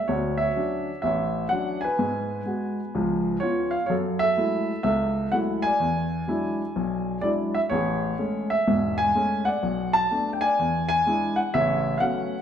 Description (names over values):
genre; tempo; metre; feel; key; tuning
solo jazz; 126 BPM; 4/4; swing 66% on 8ths; A major; A4 = 440 Hz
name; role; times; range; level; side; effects
dark baby grand piano; solo; 0.0-12.4 s; E1 to A5; -22 LUFS; equal; none
room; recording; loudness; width
wet recital hall reverb, RT60 1.4 s; recorded in a church or concert hall; -22 LUFS; side -8 dB against mid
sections
0.0-11.5 A section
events
none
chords
0.1 Dmaj7; 2.0 G#m7; 2.9 C#7; 3.9 F#m9; 5.8 E9; 7.7 Amaj7; 9.6 Bm7; 10.6 E7; 11.5 A69